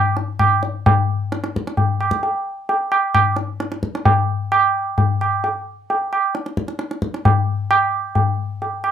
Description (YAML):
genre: indian classical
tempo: 132 BPM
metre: 7/4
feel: straight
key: none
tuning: none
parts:
  - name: tabla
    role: percussion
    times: 0.2-8.9 s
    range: none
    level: -17 LUFS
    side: equal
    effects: none
room: light reverb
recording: close, detailed microphones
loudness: -17 LUFS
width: side -9 dB against mid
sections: 0.0-8.9 A section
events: none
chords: none